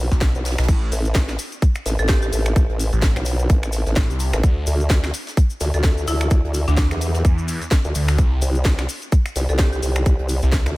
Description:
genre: bass house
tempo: 128 BPM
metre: 4/4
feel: swing 57% on 16ths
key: unclear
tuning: A4 = 439 Hz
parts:
  - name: formant-sweep wobble bass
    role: bass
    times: 0.0-10.8 s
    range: A1 to E2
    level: -20 LUFS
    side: equal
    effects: chorus, tube saturation, sidechain pumping
  - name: phased detuned saw bass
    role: bass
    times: 0.1-10.6 s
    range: A1 to E2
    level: -21 LUFS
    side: equal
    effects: phaser, overdrive, sidechain pumping
  - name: electronic kick drum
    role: drums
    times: 0.1-10.6 s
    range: none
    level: -16 LUFS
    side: equal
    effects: none
  - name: garage drum kit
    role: drums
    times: 0.1-10.7 s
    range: crash cymbal, finger snaps, hi-hat, snare drum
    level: -28 LUFS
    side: equal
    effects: none
  - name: soft brush drum kit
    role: drums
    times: 0.1-10.8 s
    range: hi-hat, snare drum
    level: -37 LUFS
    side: right 2 dB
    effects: none
  - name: cabasa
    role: percussion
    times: 0.1-10.7 s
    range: none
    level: -35 LUFS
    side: left 3 dB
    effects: none
  - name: buzzing marimba with hard mallets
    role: melody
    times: 2.0-2.3, 5.7-9.8 s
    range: D4 to A4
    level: -30 LUFS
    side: equal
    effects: diffuse ambient delay
room: studio reverb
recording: none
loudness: -17 LUFS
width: side -20 dB against mid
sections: 0.0-10.8 A section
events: none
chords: 0.0 N.C.; 4.4 Dsus2; 8.2 N.C.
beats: 0.22 | 0.69 1.15 1.62 2.09 | 2.56 3.03 3.50 3.97 | 4.43 4.90 5.37 5.84 | 6.31 6.78 7.25 7.72 | 8.19 8.65 9.12 9.59 | 10.06 10.53

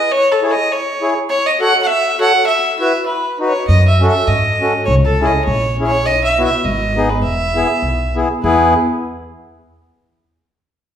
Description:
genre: alpine folk, alpine dance band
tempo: 101 BPM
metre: 2/4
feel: swing 55% on 8ths, rubato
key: E major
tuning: A4 = 440 Hz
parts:
  - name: rich fiddle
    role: melody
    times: 0.0-8.7 s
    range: A4 to F#5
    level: -16 LUFS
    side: equal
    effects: none
  - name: accordion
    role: accompaniment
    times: 0.4-8.7 s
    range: B3 to C#5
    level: -18 LUFS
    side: left 1 dB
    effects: none
  - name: upright bass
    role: bass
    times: 3.7-8.7 s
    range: E1 to G#2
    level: -17 LUFS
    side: equal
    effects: none
room: wet recital hall reverb, RT60 1.4 s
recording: recorded in a church or concert hall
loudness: -12 LUFS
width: side -9 dB against mid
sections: 0.0-8.4 A section; 8.4-9.6 B section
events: none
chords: 0.1 C#m; 1.3 F#m; 2.5 Bsus4; 3.1 B; 3.7 F#m; 4.9 C#m; 6.1 Bsus4; 6.6 G#m; 7.2 E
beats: | 0.11 0.70 | 1.28 1.87 | 2.47 3.08 | 3.68 4.28 | 4.88 5.47 | 6.06 6.64 | 7.23 7.83 | 8.43

